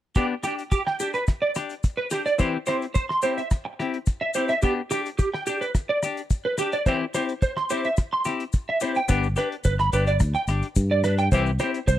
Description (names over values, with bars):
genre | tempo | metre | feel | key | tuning
highlife guitar band | 108 BPM | 4/4 | straight | G major | A4 = 440 Hz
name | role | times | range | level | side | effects
semi-hollow electric guitar | accompaniment | 0.2-11.8 s | E3 to G4 | -27 LUFS | left 5 dB | wide subtle chorus
electric guitar at the edge of break-up | arpeggios | 0.2-12.0 s | G4 to C6 | -25 LUFS | right 3 dB | ensemble chorus, slapback echo
cloth-damped thuddy drum kit | drums | 0.2-12.0 s | hi-hat, kick drum, rim click | -23 LUFS | equal | none
maracas | percussion | 0.2-12.0 s | none | -38 LUFS | left 10 dB | none
fingered electric bass | bass | 9.1-12.0 s | G1 to G2 | -23 LUFS | equal | none
room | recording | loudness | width
little or no reverb | dry, close 1970s-style studio recording | -22 LUFS | side -12 dB against mid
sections
0.2-9.1 A section; 9.1-12.0 B section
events
none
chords
0.2 G; 2.4 C; 4.6 G; 6.9 C; 9.1 G; 11.3 C